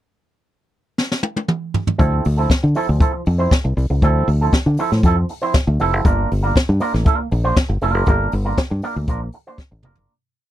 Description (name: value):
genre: disco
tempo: 118 BPM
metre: 4/4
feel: straight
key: D minor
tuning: A4 = 440 Hz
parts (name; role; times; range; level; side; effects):
- jazz brush drum kit; drums; 1.0-10.1 s; hi-hat, kick drum, snare drum, toms; -17 LUFS; equal; none
- electric guitar with an envelope filter; accompaniment; 2.0-10.1 s; F3 to C5; -21 LUFS; right 3 dB; none
- fingered electric bass; bass; 2.0-10.1 s; F1 to D3; -17 LUFS; equal; none
room: little or no reverb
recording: dry, close 1970s-style studio recording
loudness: -16 LUFS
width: side -13 dB against mid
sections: 0.0-2.0 pickup bar; 2.0-10.1 groove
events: drum fill 1.0-2.0, 9.6-10.1; fade-out 8.1-10.1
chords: 0.0 N.C.; 2.0 Dm9; 6.1 Gm7